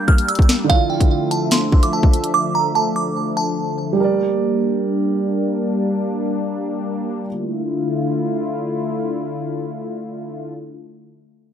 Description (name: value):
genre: hip hop, drill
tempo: 146 BPM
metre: 4/4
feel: half-time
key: D minor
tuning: A4 = 440 Hz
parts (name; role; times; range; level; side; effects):
- delicate synth tine bell; melody; 0.0-3.9 s; F5 to F6; -21 LUFS; right 3 dB; chorus, phaser, digital delay
- dark baby grand piano; accompaniment; 0.0-7.3 s; D3 to D5; -23 LUFS; right 5 dB; none
- sweeping resonant pad; sustained chords; 0.0-10.5 s; D3 to E5; -22 LUFS; left 2 dB; chorus
- drill drum kit; drums; 0.1-2.3 s; hi-hat, kick drum, snare drum; -14 LUFS; equal; none
room: little or no reverb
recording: dark, warm production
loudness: -17 LUFS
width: side -8 dB against mid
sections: 0.0-10.6 A section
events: none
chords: 0.0 Gm; 0.7 Dmadd9; 4.0 Gm; 7.3 Dmadd9